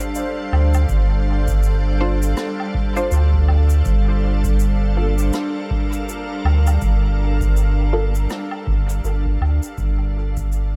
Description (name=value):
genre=ambient dub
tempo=81 BPM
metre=4/4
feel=swing 59% on 16ths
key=G minor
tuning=A4 = 443 Hz
part: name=soft additive organ-like pad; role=sustained chords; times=0.0-10.8 s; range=G3 to F5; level=-28 LUFS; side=equal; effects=ensemble chorus, built-in reverb
part: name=shaker, woodblock and rim click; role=drums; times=0.0-10.7 s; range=none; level=-34 LUFS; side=equal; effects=dub echo
part: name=warm sub bass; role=bass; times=0.5-10.8 s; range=G1 to D2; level=-19 LUFS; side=equal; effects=none
part: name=electronic kick drum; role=drums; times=0.9-10.5 s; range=none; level=-27 LUFS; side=equal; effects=none
part: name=filtered dub chord stab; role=stabs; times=2.0-8.1 s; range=Bb3 to C5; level=-30 LUFS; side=equal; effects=phaser, subtle chorus, cassette tape, dub echo
room=small room ambience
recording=none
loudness=-19 LUFS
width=mono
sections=0.0-10.8 A section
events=fade-out 7.8-10.8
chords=0.0 Dm7/G; 3.9 Gm9; 9.8 Dm/G